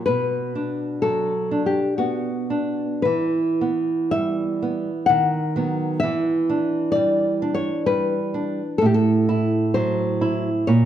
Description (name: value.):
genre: romantic duo for nylon-string guitar and classical guitar.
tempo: 64 BPM.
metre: 3/4.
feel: rubato.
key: unclear.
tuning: A4 = 440 Hz.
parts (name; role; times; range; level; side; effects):
nylon-string guitar; accompaniment; 0.0-10.9 s; A2 to E4; -21 LUFS; right 2 dB; none.
nylon-string guitar; melody; 0.1-10.9 s; F#4 to F#5; -23 LUFS; left 3 dB; none.
room: moderate scoring stage reverb, RT60 1.8 s.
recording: dark, warm production.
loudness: -19 LUFS.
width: side -10 dB against mid.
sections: 0.0-10.9 A section.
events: none.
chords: 0.1 Bm; 3.0 Em; 5.1 B/D#; 6.0 Em7; 8.8 F#m7b5/A.